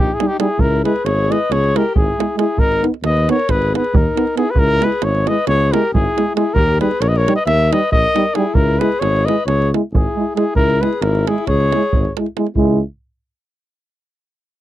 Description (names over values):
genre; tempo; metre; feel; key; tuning
balkan folk, Balkan brass band; 271 BPM (eighths); 9/8; straight; C# dorian sharp4; A4 = 439 Hz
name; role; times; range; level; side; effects
mellow trumpet; melody; 0.0-12.1 s; G4 to E5; -18 LUFS; equal; none
clear alto saxophone; second line; 0.0-12.1 s; D#4 to B4; -25 LUFS; left 11 dB; none
mellow tuba; bass; 0.0-12.8 s; G#1 to D#2; -18 LUFS; equal; none
mellow euphonium; accompaniment; 0.2-12.8 s; D#4 to E4; -22 LUFS; left 5 dB; none
warm euphonium; accompaniment; 0.2-12.8 s; G3 to B3; -20 LUFS; right 5 dB; none
davul; percussion; 0.2-12.8 s; none; -19 LUFS; right 2 dB; none
room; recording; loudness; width
little or no reverb; dry, close 1970s-style studio recording; -14 LUFS; side -13 dB against mid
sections
0.0-12.6 A section; 12.6-14.6 B section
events
none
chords
0.0 D#; 0.6 C#m; 2.6 G#m; 4.6 C#m; 6.6 D#; 8.6 C#m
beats
0.15 0.37 | 0.59 0.81 1.03 1.25 1.48 1.70 1.92 2.14 2.36 | 2.58 2.80 3.02 3.24 3.46 3.68 3.90 4.12 4.34 | 4.57 4.79 5.01 5.23 5.45 5.67 5.89 6.11 6.33 | 6.55 6.78 7.00 7.22 7.44 7.66 7.88 8.11 8.33 | 8.55 8.77 8.99 9.22 9.44 9.66 9.88 10.11 10.33 | 10.55 10.78 11.00 11.22 11.45 11.67 11.89 12.12 12.34 | 12.56 12.78